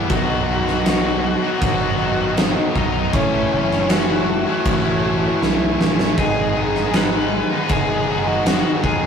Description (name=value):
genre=quiet-loud alternative rock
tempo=79 BPM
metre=4/4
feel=straight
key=G# phrygian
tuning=A4 = 440 Hz
part: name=clear studio string section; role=sustained chords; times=0.0-9.1 s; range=F#4 to C#6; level=-36 LUFS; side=left 1 dB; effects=none
part: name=overdriven electric guitar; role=riff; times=0.0-9.1 s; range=G#2 to E4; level=-26 LUFS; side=right 5 dB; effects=none
part: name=overdriven semi-hollow guitar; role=riff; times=0.0-9.1 s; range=G#2 to B3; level=-26 LUFS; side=right 2 dB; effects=none
part: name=tight distorted guitar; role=riff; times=0.0-9.1 s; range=G#2 to E4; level=-24 LUFS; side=left 5 dB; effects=distortion
part: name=growling picked electric bass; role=bass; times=0.0-9.1 s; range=F#1 to D#2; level=-26 LUFS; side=equal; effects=overdrive
part: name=smooth overdriven lead guitar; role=melody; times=0.1-9.1 s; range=C#4 to B5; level=-23 LUFS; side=left 2 dB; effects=none
part: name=huge arena drum kit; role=drums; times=0.1-9.0 s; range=crash cymbal, kick drum, snare drum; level=-20 LUFS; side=right 1 dB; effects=none
room=moderate studio reverb, RT60 0.6 s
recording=rough rehearsal-room recording, tube saturation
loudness=-16 LUFS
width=side -7 dB against mid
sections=0.0-9.1 A section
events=drum fill 5.4-6.2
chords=0.1 B; 3.1 A; 6.2 G#m